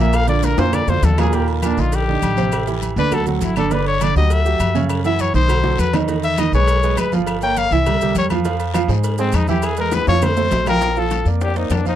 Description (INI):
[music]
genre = Afro-Cuban jazz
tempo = 202 BPM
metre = 4/4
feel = straight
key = unclear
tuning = A4 = 440 Hz
[part]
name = breathy trumpet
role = melody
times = 0.0-12.0 s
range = Bb3 to G5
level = -20 LUFS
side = left 4 dB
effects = none
[part]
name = warm baby grand piano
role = accompaniment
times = 0.0-12.0 s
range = Bb2 to F5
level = -21 LUFS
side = right 9 dB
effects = none
[part]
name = upright bass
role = bass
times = 0.0-12.0 s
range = G1 to Ab2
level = -20 LUFS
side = left 1 dB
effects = none
[part]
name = agogo bells and timbales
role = percussion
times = 0.1-11.9 s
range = none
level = -30 LUFS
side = right 3 dB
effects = none
[part]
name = claves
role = percussion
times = 0.1-11.9 s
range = none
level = -34 LUFS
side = left 23 dB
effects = none
[part]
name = congas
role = percussion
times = 0.1-12.0 s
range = none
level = -26 LUFS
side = left 4 dB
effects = none
[part]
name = cowbell and bongos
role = percussion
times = 0.1-11.9 s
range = none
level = -29 LUFS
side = left 6 dB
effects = none
[part]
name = guiro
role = percussion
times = 0.1-12.0 s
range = none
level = -36 LUFS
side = left 19 dB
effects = none
[part]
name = maracas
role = percussion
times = 0.1-12.0 s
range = none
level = -38 LUFS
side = right 14 dB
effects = none
[part]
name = breathy mellow silver concert flute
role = second line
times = 10.7-12.0 s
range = Bb4 to G5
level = -26 LUFS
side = left 11 dB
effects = none
[sound]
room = light reverb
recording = dry, close 1970s-style studio recording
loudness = -15 LUFS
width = side -11 dB against mid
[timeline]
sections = 0.0-1.3 A section; 1.3-10.8 A section; 10.8-12.0 B section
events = trumpet solo 0.0-10.8; drum fill 0.4-1.3, 5.6-6.1, 9.9-10.8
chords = 0.0 Bb; 1.3 Ebmaj7; 2.5 Am7; 3.1 D; 3.7 G5; 4.9 Gb5; 5.5 B7b9; 6.1 Emaj7; 7.3 Gm7b5; 7.9 C7; 8.5 Fm; 9.6 E; 10.2 F; 10.8 Bb